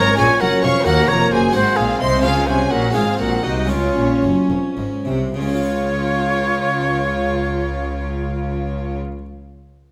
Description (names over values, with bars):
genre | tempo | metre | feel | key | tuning
classical, baroque-style concerto movement with solo episodes | 70-89 BPM (dotted quarters) | 6/8 | straight | Db major | A4 = 440 Hz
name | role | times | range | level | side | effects
concert flute | melody | 0.0-9.0 s | F4 to F5 | -23 LUFS | equal | none
warm chamber violin section | melody | 0.0-9.0 s | Db5 to Db6 | -27 LUFS | equal | none
dark chamber violin section | second line | 0.0-9.0 s | Db4 to Db5 | -27 LUFS | equal | none
harpsichord | accompaniment | 0.0-9.3 s | Eb2 to Db5 | -27 LUFS | equal | none
rich studio viola section | accompaniment | 0.0-9.0 s | Bb3 to F4 | -27 LUFS | equal | none
rich chamber cello section | bass | 0.0-9.0 s | Eb2 to Db3 | -28 LUFS | equal | none
rich chamber double bass section | bass | 0.0-9.0 s | F1 to Eb2 | -26 LUFS | equal | none
room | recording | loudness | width
wet recital hall reverb, RT60 1.4 s | none | -18 LUFS | mono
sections
0.0-5.3 A section; 5.3-8.7 B section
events
slowing down 1.6-5.3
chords
0.2 Bbm; 0.9 Ebm; 1.6 Ab; 2.2 Db; 3.0 Ab; 3.7 Db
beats
0.19 | 0.87 1.55 | 2.24 2.95 | 3.70 4.50 | 5.34 6.19 | 7.04 7.89